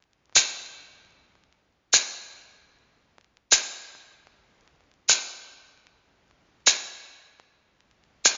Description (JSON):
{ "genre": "trip hop", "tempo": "76 BPM", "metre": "4/4", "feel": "swing 60% on 16ths", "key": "none", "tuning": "none", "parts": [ { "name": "maracas", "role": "percussion", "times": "0.4-8.4 s", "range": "none", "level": "-20 LUFS", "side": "equal", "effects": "none" } ], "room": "moderate echo chamber reverb, RT60 1.9 s, small room ambience", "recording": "dark, warm production, vinyl crackle, nothing above 7.4 kHz", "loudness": "-22 LUFS", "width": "mono", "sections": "0.0-8.4 A section", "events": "none", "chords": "none" }